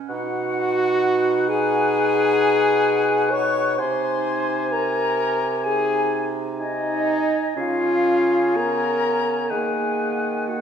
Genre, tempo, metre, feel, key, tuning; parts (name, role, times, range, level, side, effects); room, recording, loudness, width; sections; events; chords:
classical, slow romantic movement for wind quintet; 59-67 BPM; 4/4; rubato; A4 = 440 Hz
warm clarinet; accompaniment; 0.0-10.6 s; A#3 to D#4; -30 LUFS; right 4 dB
silver concert flute; melody; 0.1-10.6 s; D#5 to C#6; -27 LUFS; left 4 dB
warm oboe; second line; 0.1-10.6 s; F#5 to G#5; -27 LUFS; left 2 dB
warm French horn; accompaniment; 0.1-10.6 s; D#4 to C#5; -21 LUFS; left 1 dB
clear bassoon; bass; 0.1-10.6 s; B2 to D#3; -28 LUFS; right 4 dB
wet recital hall reverb, RT60 1.7 s; minimal, uncompressed stereo recording; -18 LUFS; side -8 dB against mid
0.0-10.6 A section
0.1 G#m7/B; 3.8 G#/B#; 7.6 C#; 9.5 D#m